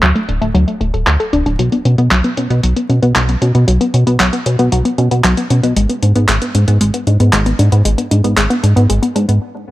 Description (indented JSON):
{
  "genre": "italo disco",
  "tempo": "115 BPM",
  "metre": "4/4",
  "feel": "straight",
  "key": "unclear",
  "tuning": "A4 = 441 Hz",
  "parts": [
    { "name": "wide unison pluck", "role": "arpeggios", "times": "0.0-9.4 s", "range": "F#3 to A4", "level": "-16 LUFS", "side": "left 1 dB", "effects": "analog delay" },
    { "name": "chorused synth bass", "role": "bass", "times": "0.0-9.4 s", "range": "D1 to B2", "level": "-13 LUFS", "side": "equal", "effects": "none" },
    { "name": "clean 12-bit digital drum machine", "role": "drums", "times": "0.0-9.4 s", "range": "handclaps, hi-hat", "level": "-18 LUFS", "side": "equal", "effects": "low-pass filter on hats, low-pass filter on snare, low-pass filter on room" }
  ],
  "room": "digital ambience",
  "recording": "dry, gritty hardware recording, vinyl crackle",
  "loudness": "-11 LUFS",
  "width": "side -16 dB against mid",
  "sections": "0.0-9.7 A section",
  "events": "stop 9.4",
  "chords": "0.0 D; 1.6 Bsus2; 5.8 G#dim"
}